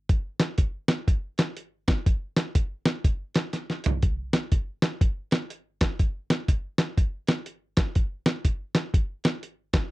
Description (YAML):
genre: gospel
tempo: 122 BPM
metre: 4/4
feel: swing 62% on 8ths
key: none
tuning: none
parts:
  - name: dusty soul sampler-style drum kit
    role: drums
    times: 0.1-9.8 s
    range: hi-hat, kick drum, snare drum, toms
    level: -23 LUFS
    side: equal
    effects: none
room: light reverb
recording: dry, close 1970s-style studio recording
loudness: -24 LUFS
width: side -19 dB against mid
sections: 0.1-4.0 A section; 4.0-9.9 B section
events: drum fill 3.5-4.0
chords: none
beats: | 0.10 0.59 1.08 1.57 | 2.06 2.56 3.05 3.54 | 4.03 4.52 5.01 5.50 | 5.99 6.49 6.97 7.46 | 7.96 8.45 8.94 9.43